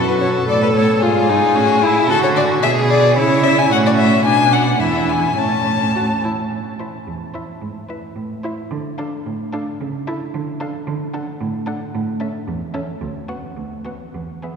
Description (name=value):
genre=quick classical-period movement for string quartet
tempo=111 BPM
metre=2/4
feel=rubato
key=A major, A minor from 6.5 s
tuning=A4 = 440 Hz
part: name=dark violin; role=melody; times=0.0-14.6 s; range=Ab4 to A5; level=-18 LUFS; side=left 5 dB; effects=none
part: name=rich violin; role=second line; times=0.0-14.6 s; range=C#4 to C5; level=-27 LUFS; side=equal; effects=none
part: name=warm viola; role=accompaniment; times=0.0-14.6 s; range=B3 to A4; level=-22 LUFS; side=right 1 dB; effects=none
part: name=rich cello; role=bass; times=0.0-14.6 s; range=D2 to D3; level=-21 LUFS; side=right 3 dB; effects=none
room=wet cathedral reverb, RT60 4.6 s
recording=recorded in a church or concert hall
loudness=-15 LUFS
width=side -6 dB against mid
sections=0.0-6.5 A section; 6.5-14.6 B section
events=none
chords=0.0 F#m; 1.0 Fm7/Ab; 1.6 F#m/A; 2.1 D; 2.6 G#dim/B; 3.2 C#m; 3.7 F#m/A; 4.2 Bm; 4.8 E7; 5.4 A; 6.5 Am; 7.6 E/G#; 8.2 Am; 8.7 Dm; 9.8 A/C#; 10.3 Dm; 10.9 D; 11.9 A; 13.0 Bm/D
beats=0.47 | 1.02 1.55 | 2.09 2.63 | 3.17 3.71 | 4.25 4.80 | 5.37 5.94 | 6.51 7.07 | 7.62 8.16 | 8.71 9.26 | 9.80 10.34 | 10.87 11.40 | 11.94 12.47 | 13.01 13.56 | 14.14